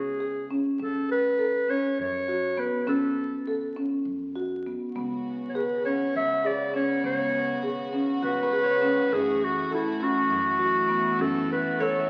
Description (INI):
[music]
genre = contemporary instrumental, chamber music in an uneven meter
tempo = 202 BPM (eighths)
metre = 7/8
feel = straight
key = F# minor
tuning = A4 = 436 Hz
[part]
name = warm clarinet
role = melody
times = 0.0-12.1 s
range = E4 to E5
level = -28 LUFS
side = equal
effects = none
[part]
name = marimba with soft mallets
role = arpeggios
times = 0.0-12.0 s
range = B3 to A4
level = -31 LUFS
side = equal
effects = none
[part]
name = upright bass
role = bass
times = 0.0-12.1 s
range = G#1 to F#2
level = -48 LUFS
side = equal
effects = none
[part]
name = kora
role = texture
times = 0.0-12.1 s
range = F#4 to E5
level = -36 LUFS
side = equal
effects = none
[part]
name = warm chamber string section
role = sustained chords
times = 4.9-12.1 s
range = C#3 to F#4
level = -36 LUFS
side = equal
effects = none
[sound]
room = wet recital hall reverb, RT60 1.4 s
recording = very old 78 rpm record, vinyl crackle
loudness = -26 LUFS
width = mono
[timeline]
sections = 0.0-12.1 A section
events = none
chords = 0.0 C#5; 0.8 F#m; 5.0 C#7sus4; 9.1 F#m7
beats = 0.20 0.49 | 0.79 1.09 1.39 1.69 1.98 2.28 2.58 | 2.88 3.17 3.47 3.77 4.07 4.36 4.66 | 4.96 5.25 5.55 5.85 6.15 6.44 6.74 | 7.04 7.34 7.63 7.93 8.23 8.53 8.82 | 9.12 9.42 9.72 10.02 10.31 10.61 10.91 | 11.21 11.50 11.80 12.10